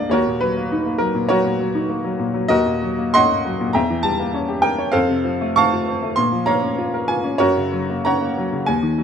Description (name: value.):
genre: classical, romantic character piece for solo piano.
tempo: 99 BPM.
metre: 4/4.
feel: uneven beats, rubato.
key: unclear.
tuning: A4 = 444 Hz.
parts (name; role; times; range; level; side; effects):
clear upright piano; solo; 0.0-9.0 s; A#1 to Db6; -17 LUFS; equal; none.
room: light reverb.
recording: close, detailed microphones.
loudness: -17 LUFS.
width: side -7 dB against mid.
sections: 0.0-9.0 A section.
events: none.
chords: 0.1 D#m7; 2.5 Ebm7; 3.8 Edim7; 4.9 F; 6.2 Bbm; 7.4 Gb.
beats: | 0.12 0.71 1.29 1.89 | 2.50 3.15 3.76 4.35 | 4.94 5.58 6.18 6.78 | 7.40 8.06 8.67.